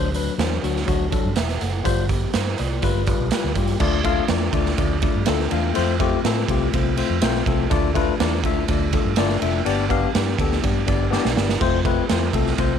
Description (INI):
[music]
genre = uptempo 1960s-style soul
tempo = 123 BPM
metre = 4/4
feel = straight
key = unclear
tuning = A4 = 437 Hz
[part]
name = tine electric piano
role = accompaniment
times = 0.0-12.8 s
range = F#3 to F#5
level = -23 LUFS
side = left 12 dB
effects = medium stereo tremolo
[part]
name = vintage muted fingered electric bass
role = bass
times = 0.0-12.8 s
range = E1 to A2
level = -24 LUFS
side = right 1 dB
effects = none
[part]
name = raw garage drum kit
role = drums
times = 0.1-12.7 s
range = crash cymbal, hi-hat, kick drum, ride cymbal, snare drum, splash cymbal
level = -22 LUFS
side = right 4 dB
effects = none
[sound]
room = small room ambience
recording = 1960s-style stereo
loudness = -18 LUFS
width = side -8 dB against mid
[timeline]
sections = 0.0-3.8 A section; 3.8-12.8 B section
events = drum fill 11.1-11.6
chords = 0.0 D7; 1.9 G7sus4; 2.8 G7; 3.8 Dm; 5.8 F; 7.7 Dm; 9.7 G; 11.6 F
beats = 0.39 0.88 1.37 | 1.86 2.35 2.83 3.32 | 3.81 4.30 4.79 5.28 | 5.76 6.25 6.74 7.22 | 7.71 8.20 8.69 9.17 | 9.66 10.15 10.63 11.12 | 11.61 12.09 12.58